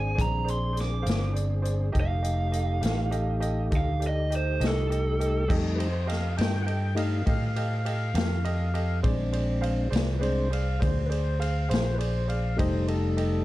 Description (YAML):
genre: slow blues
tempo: 68 BPM (dotted quarters)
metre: 12/8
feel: straight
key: F mixolydian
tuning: A4 = 440 Hz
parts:
  - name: lead guitar through a small cranked amp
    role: melody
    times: 0.0-5.5 s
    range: A4 to D6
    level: -31 LUFS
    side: right 3 dB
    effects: overdrive
  - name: clear upright piano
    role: accompaniment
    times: 0.0-13.4 s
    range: G4 to F5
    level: -36 LUFS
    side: right 3 dB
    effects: none
  - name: tonewheel organ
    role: sustained chords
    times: 0.0-13.4 s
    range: G3 to G5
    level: -32 LUFS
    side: left 2 dB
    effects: slow rotary speaker
  - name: fingered electric bass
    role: bass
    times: 0.0-13.4 s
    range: F1 to A2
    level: -27 LUFS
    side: equal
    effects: none
  - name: swinging big-band drum kit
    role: drums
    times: 0.2-13.3 s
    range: crash cymbal, hi-hat, kick drum, ride cymbal, snare drum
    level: -31 LUFS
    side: equal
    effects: none
room: little or no reverb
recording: dark, warm production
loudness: -24 LUFS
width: side -16 dB against mid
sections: 0.0-5.5 A section; 5.5-13.4 B section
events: tonewheel organ solo 5.5-13.4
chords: 0.0 Bb7; 1.9 F7; 9.0 Bb7; 12.6 F7